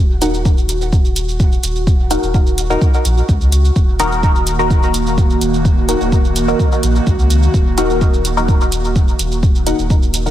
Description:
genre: dub techno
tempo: 127 BPM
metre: 4/4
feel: straight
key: Eb minor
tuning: A4 = 440 Hz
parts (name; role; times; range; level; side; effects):
- pure sine sub bass; bass; 0.0-10.3 s; Eb1 to Db2; -18 LUFS; equal; tube saturation, sidechain pumping
- bubbling stepped-filter texture; texture; 0.0-10.3 s; Gb4; -28 LUFS; equal; chorus, built-in reverb, sidechain pumping
- warbly dusty pluck; riff; 0.2-9.8 s; Eb4 to Gb5; -29 LUFS; right 1 dB; chorus, phaser, sidechain pumping, dub echo
- filtered dub chord stab; stabs; 0.2-10.3 s; Eb4 to Bb4; -20 LUFS; left 2 dB; phaser, sidechain pumping, dub echo
- electronic hi-hat and shaker; drums; 0.2-10.3 s; none; -25 LUFS; right 2 dB; none
- electronic kick drum; drums; 0.5-10.0 s; none; -13 LUFS; equal; none
- airy breathy pad; sustained chords; 4.1-10.3 s; Eb3 to Gb4; -20 LUFS; right 2 dB; chorus, sidechain pumping
room: light reverb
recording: none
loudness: -12 LUFS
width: side -12 dB against mid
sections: 0.0-10.3 A section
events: none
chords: 0.0 Ebm

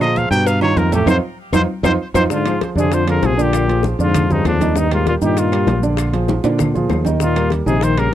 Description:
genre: Afro-Cuban jazz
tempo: 196 BPM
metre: 4/4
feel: straight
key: Bb mixolydian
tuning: A4 = 442 Hz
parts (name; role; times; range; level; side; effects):
- trumpet with straight mute; melody; 0.0-8.1 s; D4 to G5; -22 LUFS; equal; tape echo
- warm concert grand piano; accompaniment; 0.0-8.1 s; A2 to Eb5; -20 LUFS; right 5 dB; none
- fingered electric bass; bass; 0.0-8.1 s; Bb1 to Bb2; -18 LUFS; equal; none
- agogo bells and timbales; percussion; 0.0-8.1 s; none; -27 LUFS; right 7 dB; none
- claves; percussion; 0.0-8.1 s; none; -32 LUFS; left 16 dB; none
- congas; percussion; 0.0-8.1 s; none; -24 LUFS; left 2 dB; none
- maracas; percussion; 0.0-8.1 s; none; -36 LUFS; left 27 dB; none
- cowbell and bongos; percussion; 0.2-8.1 s; none; -26 LUFS; left 11 dB; none
- breathy trombone; second line; 2.3-8.1 s; F2 to F3; -20 LUFS; left 8 dB; none
room: little or no reverb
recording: dry, close 1970s-style studio recording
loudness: -14 LUFS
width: side -11 dB against mid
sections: 0.0-2.3 A section; 2.3-8.1 B section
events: muted trumpet solo 0.0-2.3; drum fill 1.1-2.3, 6.3-7.2; band accent 1.1-2.3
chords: 0.5 Gaug7; 1.1 F5; 2.3 Bb6; 4.8 Ebadd9; 6.0 Bb7; 7.2 Ebadd9

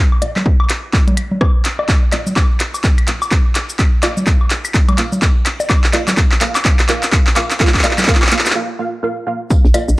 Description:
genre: minimal techno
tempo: 126 BPM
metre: 4/4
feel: swing 60% on 16ths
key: unclear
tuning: A4 = 440 Hz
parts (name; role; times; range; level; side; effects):
- woodblock, bongos, congas and claves; percussion; 0.1-9.9 s; none; -21 LUFS; left 1 dB; none
- filtered dub chord stab; stabs; 0.2-9.9 s; Bb3 to F5; -22 LUFS; right 2 dB; phaser, ensemble chorus, analog delay
- minimal click drum kit; drums; 0.2-10.0 s; cabasa, handclaps, hi-hat, rim click; -17 LUFS; equal; none
- electronic kick drum; drums; 0.5-9.6 s; none; -13 LUFS; equal; none
- tambourine and hi-hat; drums; 9.5-9.9 s; none; -31 LUFS; equal; high-pass filter on hats, high-pass filter on snare, high-pass filter on perc, high-pass filter on room
- hollow knocking FM bass; bass; 9.6-9.9 s; Bb1; -12 LUFS; equal; sidechain pumping
room: light reverb, studio reverb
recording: dry, gritty hardware recording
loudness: -12 LUFS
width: side -19 dB against mid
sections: 0.0-9.5 A section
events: build-up 0.0-9.5; drum fill 0.0-8.6; filter sweep on synth stab 0.0-9.5; break 8.6-9.5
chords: 0.0 Bb5

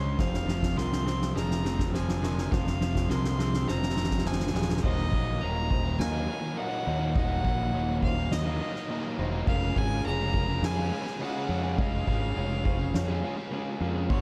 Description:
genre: post-rock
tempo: 104 BPM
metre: 4/4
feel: straight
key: Eb dorian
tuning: A4 = 440 Hz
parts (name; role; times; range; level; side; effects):
- clear violin; melody; 0.0-14.2 s; Db5 to C6; -38 LUFS; equal; tape echo
- felt-muted upright piano; arpeggios; 0.0-14.2 s; Ab4 to C6; -45 LUFS; equal; tape echo
- twangy electric guitar; arpeggios; 0.0-4.8 s; F2 to Eb4; -47 LUFS; equal; tape echo
- crunchy overdriven guitar; riff; 0.0-14.2 s; Eb2 to Ab4; -36 LUFS; equal; none
- overdriven electric guitar; riff; 0.0-14.2 s; Eb2 to Ab4; -40 LUFS; equal; none
- growling fingered electric bass; bass; 0.0-14.2 s; Eb1 to F2; -33 LUFS; equal; overdrive
- soft-mallet drum kit; drums; 0.2-14.2 s; crash cymbal, kick drum, ride cymbal, snare drum; -33 LUFS; equal; none
room: little or no reverb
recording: dark, warm production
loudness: -28 LUFS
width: mono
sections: 0.0-4.8 A section; 4.8-14.2 B section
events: build-up 0.0-4.8; drum fill 0.0-4.8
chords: 0.2 Fm; 4.8 Ebm; 9.5 Db/F

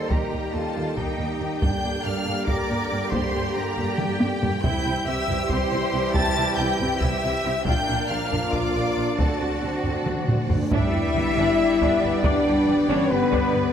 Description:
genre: cinematic, epic orchestral film score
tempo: 277 BPM (eighths)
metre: 7/8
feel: straight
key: G minor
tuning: A4 = 440 Hz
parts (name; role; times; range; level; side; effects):
- rich studio violin section; melody; 0.0-13.7 s; B4 to A6; -32 LUFS; left 1 dB; none
- warm symphonic violin section; second line; 0.0-13.7 s; G4 to A5; -30 LUFS; left 2 dB; none
- clear trombone section; sustained chords; 0.0-13.7 s; D3 to C4; -32 LUFS; right 3 dB; none
- mellow French horn section; sustained chords; 0.0-13.7 s; Bb3 to G4; -27 LUFS; left 4 dB; none
- warm symphonic string section; sustained chords; 0.0-13.7 s; Bb3 to G5; -32 LUFS; left 2 dB; none
- rich symphonic cello section; bass; 0.0-13.7 s; D3 to Bb4; -31 LUFS; right 3 dB; none
- impact, reverse cymbal and sub drop; sound effects; 0.0-0.1, 10.6-12.2 s; none; -32 LUFS; equal; none
- dark symphonic viola section; accompaniment; 0.1-13.7 s; Bb3 to D5; -32 LUFS; right 1 dB; none
- dark symphonic double bass section; bass; 0.1-13.6 s; G1 to G2; -30 LUFS; right 3 dB; none
- taiko ensemble; drums; 0.1-13.7 s; none; -27 LUFS; equal; none
- timpani; percussion; 9.2-10.7 s; D3; -32 LUFS; right 2 dB; none
- bright concert flute; second line; 10.7-13.7 s; B4 to E5; -29 LUFS; equal; none
room: wet scoring stage reverb, RT60 1.8 s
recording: none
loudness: -20 LUFS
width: side -8 dB against mid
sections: 0.0-10.7 A section; 10.7-13.7 B section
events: drum fill 4.0-4.6, 10.1-10.7; timpani fill 9.2-10.7; reverse cymbal 10.6; impact 10.7-12.2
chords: 0.0 Eb; 1.6 Gm; 4.6 C; 7.7 Bb; 9.2 D7; 10.7 G

